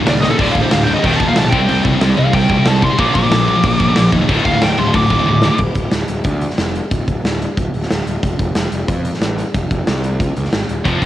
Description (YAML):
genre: heavy metal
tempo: 183 BPM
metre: 4/4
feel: straight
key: D phrygian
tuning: A4 = 440 Hz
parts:
  - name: distorted electric guitar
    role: riff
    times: 0.0-5.6, 10.8-11.1 s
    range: D2 to C4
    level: -21 LUFS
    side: right 2 dB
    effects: distortion, cassette tape
  - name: heavy high-gain guitar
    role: riff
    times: 0.0-5.6, 10.9-11.1 s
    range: D2 to C4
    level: -23 LUFS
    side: right 9 dB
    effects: none
  - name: scooped high-gain guitar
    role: riff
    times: 0.0-5.6, 10.8-11.1 s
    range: D2 to C4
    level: -17 LUFS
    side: left 4 dB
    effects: distortion, cassette tape
  - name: high-gain lead guitar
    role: melody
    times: 0.1-5.6 s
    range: A4 to D6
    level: -19 LUFS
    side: right 1 dB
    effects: distortion, cassette tape
  - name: fuzz picked electric bass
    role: bass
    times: 0.1-11.1 s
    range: D1 to F2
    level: -20 LUFS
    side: equal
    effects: overdrive
  - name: big rock drum kit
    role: drums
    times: 0.1-11.1 s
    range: crash cymbal, hi-hat, kick drum, snare drum, toms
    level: -18 LUFS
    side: equal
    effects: cassette tape
room: little or no reverb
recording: home recording on cassette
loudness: -13 LUFS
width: side -13 dB against mid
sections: 0.0-5.6 A section; 5.6-11.1 B section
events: lead electric guitar solo 0.0-5.6; drum fill 0.2, 5.3-5.6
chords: 0.4 D5; 1.0 Eb5; 1.5 C5; 3.0 Bb; 4.3 D5; 5.6 N.C.; 8.2 F5; 10.2 N.C.; 10.5 G#5